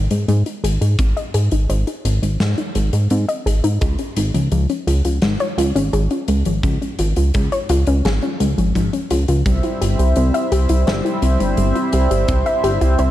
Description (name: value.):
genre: synthwave.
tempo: 85 BPM.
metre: 4/4.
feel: straight.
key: unclear.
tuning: A4 = 439 Hz.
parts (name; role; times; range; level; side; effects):
soft round pluck; arpeggios; 0.0-13.1 s; F3 to E5; -22 LUFS; left 2 dB; chorus, digital delay.
chorused synth bass; bass; 0.0-13.1 s; G1 to Ab2; -17 LUFS; equal; none.
big rock drum kit; drums; 0.1-13.1 s; hi-hat, snare drum; -28 LUFS; left 1 dB; none.
kick drum; drums; 1.0-12.4 s; none; -22 LUFS; equal; none.
chorused pulse-width pad; sustained chords; 9.5-13.1 s; G3 to E5; -20 LUFS; equal; sidechain pumping.
room: light reverb.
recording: dark, warm production.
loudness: -15 LUFS.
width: side -13 dB against mid.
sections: 0.0-13.1 A section.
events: filter sweep on synth arpeggio sound 0.0-13.1.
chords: 0.0 Ab; 3.8 Db; 9.5 C.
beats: 0.28 | 0.99 1.70 2.40 3.11 | 3.81 4.52 5.22 5.93 | 6.64 7.34 8.05 8.76 | 9.46 10.17 10.87 11.58 | 12.28 12.99.